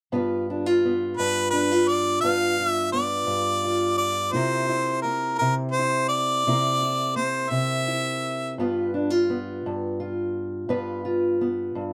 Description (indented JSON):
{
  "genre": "acoustic country blues, solo or duo",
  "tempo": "57 BPM (dotted quarters)",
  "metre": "12/8",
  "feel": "straight",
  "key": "G mixolydian",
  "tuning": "A4 = 440 Hz",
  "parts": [
    { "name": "fingerpicked steel-string acoustic guitar", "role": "accompaniment", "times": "0.1-11.9 s", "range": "G2 to B4", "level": "-27 LUFS", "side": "equal", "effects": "none" },
    { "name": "bright harmonica", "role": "melody", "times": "1.2-8.6 s", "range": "Bb4 to F5", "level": "-26 LUFS", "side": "equal", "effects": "none" }
  ],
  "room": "moderate studio ambience, RT60 0.5 s",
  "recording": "none",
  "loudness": "-24 LUFS",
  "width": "mono",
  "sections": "0.1-11.9 A section",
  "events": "none",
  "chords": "0.1 G7; 4.4 C7; 8.6 G7"
}